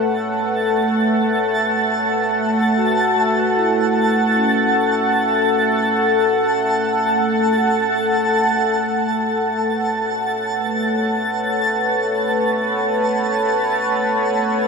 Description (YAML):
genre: ambient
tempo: free time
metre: none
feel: none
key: A major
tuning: A4 = 442 Hz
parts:
  - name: warm analog pad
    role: sustained chords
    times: 0.0-14.7 s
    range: A3 to F#5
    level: -18 LUFS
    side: equal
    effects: chorus, shimmer reverb
  - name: twinkling granular texture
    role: texture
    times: 0.2-14.7 s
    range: A5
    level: -21 LUFS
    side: right 1 dB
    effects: built-in reverb, shimmer reverb
  - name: vibraphone with soft mallets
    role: arpeggios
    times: 2.8-9.0 s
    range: A3 to C#6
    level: -26 LUFS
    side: left 2 dB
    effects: ping-pong delay, shimmer reverb
room: wet lush hall reverb, RT60 3.1 s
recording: none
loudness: -16 LUFS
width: side -4 dB against mid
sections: 0.0-8.9 A section; 8.9-14.7 B section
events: fade-out on vibraphone 0.0-8.9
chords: 0.0 A6